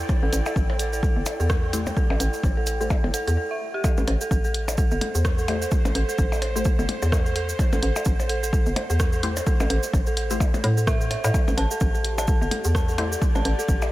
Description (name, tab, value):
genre	minimal techno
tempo	128 BPM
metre	4/4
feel	swing 58% on 16ths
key	A minor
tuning	A4 = 440 Hz
part	hollow knocking FM bass	bass	0.0-13.9 s	G1 to A2	-25 LUFS	equal	sidechain pumping
part	airy breathy pad	texture	0.0-13.9 s	E4 to G5	-35 LUFS	right 2 dB	chorus, sidechain pumping
part	pulsing gated texture	texture	0.0-3.4, 11.9-13.9 s	G4 to C5	-43 LUFS	left 4 dB	none
part	electronic kick drum	drums	0.1-13.8 s	none	-22 LUFS	equal	overdrive
part	cabasa	percussion	0.1-13.9 s	none	-37 LUFS	right 4 dB	none
part	percussion blips	percussion	0.1-13.9 s	none	-33 LUFS	left 3 dB	analog delay
part	dark detuned synth bell	riff	0.2-13.7 s	G4 to A5	-29 LUFS	right 1 dB	chorus, tremolo, sidechain pumping, analog delay
part	punchy analog drum machine	drums	0.3-13.6 s	hi-hat, rim click	-33 LUFS	equal	overdrive
part	filtered dub chord stab	stabs	1.7-13.1 s	A3 to C5	-35 LUFS	left 4 dB	none
room	light reverb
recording	none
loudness	-20 LUFS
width	side -16 dB against mid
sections	0.0-3.8 A section; 3.8-13.9 B section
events	filter sweep on synth bell 0.0-3.8; break 3.4-3.8; drop 3.8-13.9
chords	0.0 Am7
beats	| 0.09 0.56 1.03 1.50 | 1.97 2.44 2.90 3.37 | 3.84 4.31 4.78 5.25 | 5.72 6.18 6.65 7.12 | 7.59 8.06 8.53 9.00 | 9.47 9.94 10.40 10.87 | 11.34 11.81 12.28 12.75 | 13.22 13.69